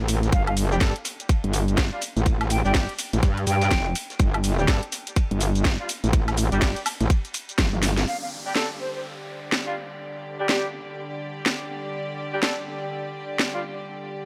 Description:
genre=bass house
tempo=124 BPM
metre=4/4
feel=swing 61% on 16ths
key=unclear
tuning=A4 = 440 Hz
part: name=metallic wobble bass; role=bass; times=0.0-8.1 s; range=F1 to G2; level=-25 LUFS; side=equal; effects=chorus, sidechain pumping
part: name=garage drum kit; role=drums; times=0.1-13.5 s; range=hi-hat, shaker, snare drum, toms, woodblock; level=-29 LUFS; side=equal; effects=overdrive
part: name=warm soul drum kit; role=drums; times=0.1-8.1 s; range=hi-hat, ride cymbal, snare drum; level=-43 LUFS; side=equal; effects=none
part: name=breathy mellow jazz flute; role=melody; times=0.3-4.0, 8.1-9.0 s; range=C5 to G5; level=-33 LUFS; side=equal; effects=dub echo
part: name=electronic kick drum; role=drums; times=0.3-7.7 s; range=none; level=-24 LUFS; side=equal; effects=overdrive
part: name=warm horn section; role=stabs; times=0.7-13.6 s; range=G3 to A4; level=-34 LUFS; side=equal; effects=sidechain pumping, dub echo
part: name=warm studio string section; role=sustained chords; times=8.1-14.3 s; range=D3 to D5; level=-35 LUFS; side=equal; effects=sidechain pumping
part: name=downlifter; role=sound effects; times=8.1-11.9 s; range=none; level=-42 LUFS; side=equal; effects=none
room=light reverb, small room ambience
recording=none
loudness=-24 LUFS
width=mono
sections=0.0-8.1 A section; 8.1-14.3 B section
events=drum fill 7.6-8.1; band accent 7.9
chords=0.0 G5

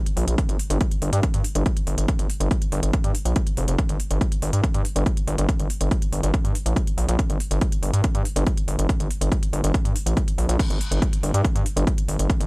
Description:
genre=driving peak-time techno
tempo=141 BPM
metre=4/4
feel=straight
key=G minor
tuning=A4 = 445 Hz
part: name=techno drum kit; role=drums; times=0.1-12.5 s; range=crash cymbal, hi-hat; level=-33 LUFS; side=equal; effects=overdrive
part: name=gritty driven synth bass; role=bass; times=0.2-12.5 s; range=F1 to G2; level=-22 LUFS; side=equal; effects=sidechain pumping
part: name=electronic kick drum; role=drums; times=0.4-12.4 s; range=none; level=-23 LUFS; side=equal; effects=overdrive
room=digital ambience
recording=dry, gritty hardware recording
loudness=-20 LUFS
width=side -32 dB against mid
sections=0.0-10.6 A section; 10.6-12.5 B section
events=drop 10.6-12.5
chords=none

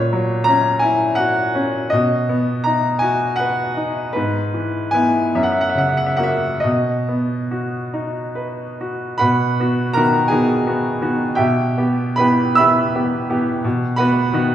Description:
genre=classical, romantic nocturne for solo piano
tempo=44-60 BPM (dotted quarters)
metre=12/8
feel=rubato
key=B major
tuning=A4 = 438 Hz
part: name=bright upright piano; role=solo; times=0.0-14.5 s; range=F#2 to E6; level=-16 LUFS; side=equal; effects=none
room=wet recital hall reverb, RT60 1.4 s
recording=heard from further back in the room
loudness=-16 LUFS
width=side -10 dB against mid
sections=0.0-9.2 A section; 9.2-14.5 B section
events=none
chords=0.0 F#7/A#; 1.9 B; 4.2 E/G#; 5.3 F#; 6.6 B; 11.4 Em/B; 13.6 B

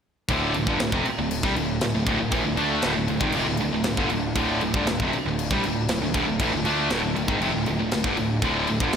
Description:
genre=heavy metal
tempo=118 BPM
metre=4/4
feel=straight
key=D minor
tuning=A4 = 440 Hz
part: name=analog string pad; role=sustained chords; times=0.3-9.0 s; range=D3 to F4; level=-36 LUFS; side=equal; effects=none
part: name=heavy high-gain guitar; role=riff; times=0.3-8.9 s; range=D2 to D4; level=-26 LUFS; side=right 8 dB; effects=distortion, slapback echo
part: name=high-gain distorted guitar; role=riff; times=0.3-9.0 s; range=D2 to D4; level=-26 LUFS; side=left 7 dB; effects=distortion
part: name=fuzz picked electric bass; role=bass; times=0.3-8.9 s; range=D1 to D2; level=-31 LUFS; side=equal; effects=overdrive
part: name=tight metal drum kit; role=drums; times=0.3-9.0 s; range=crash cymbal, kick drum, snare drum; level=-29 LUFS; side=left 1 dB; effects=none
room=moderate lush hall reverb, RT60 1.8 s, studio reverb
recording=big arena sound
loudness=-21 LUFS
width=side -7 dB against mid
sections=0.3-9.0 A section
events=none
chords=0.3 Dm

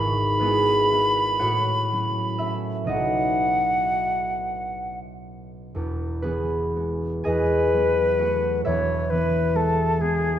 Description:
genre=classical, romantic duo for flute and harp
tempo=39-45 BPM (dotted quarters)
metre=6/8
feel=rubato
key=E major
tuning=A4 = 440 Hz
part: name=silver concert flute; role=melody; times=0.0-10.4 s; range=G#4 to B5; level=-22 LUFS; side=left 1 dB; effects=none
part: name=concert harp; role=accompaniment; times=0.0-10.4 s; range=E1 to G#5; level=-24 LUFS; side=right 1 dB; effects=none
room=wet scoring stage reverb, RT60 1.8 s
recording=dark, warm production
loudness=-20 LUFS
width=side -10 dB against mid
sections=0.0-10.4 A section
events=none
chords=0.0 E/G#; 1.4 F#m/A; 2.9 B; 5.8 E; 7.3 B7/E; 8.7 E

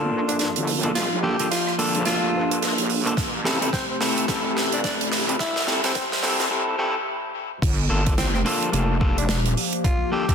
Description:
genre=glitch hop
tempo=108 BPM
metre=4/4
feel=swing 60% on 16ths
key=G dorian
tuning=A4 = 440 Hz
part: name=warbly tape-like pad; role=sustained chords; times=0.1-10.3 s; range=C3 to G4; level=-31 LUFS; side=left 2 dB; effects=chorus, built-in reverb, sidechain pumping
part: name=electric guitar at the edge of break-up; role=stabs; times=0.0-10.3 s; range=Bb3 to A4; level=-25 LUFS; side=equal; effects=sidechain pumping, low-pass filter, ping-pong delay
part: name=wobble bass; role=bass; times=0.0-9.5 s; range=F1 to G2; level=-26 LUFS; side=equal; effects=chorus, tube saturation, high-pass filter
part: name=raspy tenor saxophone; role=melody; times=0.3-10.3 s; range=C4 to G4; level=-29 LUFS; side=left 1 dB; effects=vintage 12-bit sampler grit, ping-pong delay
part: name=gated 80s drum kit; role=drums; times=0.3-10.3 s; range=crash cymbal, hi-hat, rim click, snare drum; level=-26 LUFS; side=right 2 dB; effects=high-pass filter on hats, high-pass filter on toms, high-pass filter on cymbals, high-pass filter on snare, high-pass filter on room
part: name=electronic kick drum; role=drums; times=3.2-10.3 s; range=none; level=-24 LUFS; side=equal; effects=overdrive
room=moderate plate reverb, RT60 2.1 s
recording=dense, heavily limited modern master, high-pass filter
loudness=-20 LUFS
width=side -7 dB against mid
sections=0.0-7.6 A section; 7.6-10.3 B section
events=build-up 0.0-7.6; drum fill 0.0-6.5; filter sweep on ambient pad 0.0-7.6; break 6.5-7.6; drop 7.6-10.3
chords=0.0 Gm7; 3.2 Am7; 7.6 Gm7

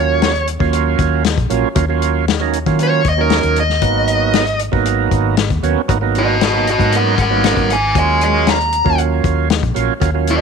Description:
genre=straight-eighth soul blues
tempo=116 BPM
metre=4/4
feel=straight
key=Eb minor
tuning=A4 = 440 Hz
part: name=dark smooth lead guitar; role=melody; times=0.0-10.4 s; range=Gb4 to Bb5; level=-16 LUFS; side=left 1 dB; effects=overdrive
part: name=overdriven tonewheel organ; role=accompaniment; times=0.0-10.4 s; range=Gb3 to F4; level=-18 LUFS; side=right 14 dB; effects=slow rotary speaker
part: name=vintage muted fingered electric bass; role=bass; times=0.0-10.4 s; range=Ab1 to Eb3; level=-18 LUFS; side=left 1 dB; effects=none
part: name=warm soul drum kit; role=drums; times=0.2-10.4 s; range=hi-hat, kick drum, snare drum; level=-19 LUFS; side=left 7 dB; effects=none
room=light reverb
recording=1960s-style stereo with parts hard left and right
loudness=-13 LUFS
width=side -6 dB against mid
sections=0.0-10.4 A section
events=none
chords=0.0 Ebm9; 3.8 Abm9; 7.9 Ebm9

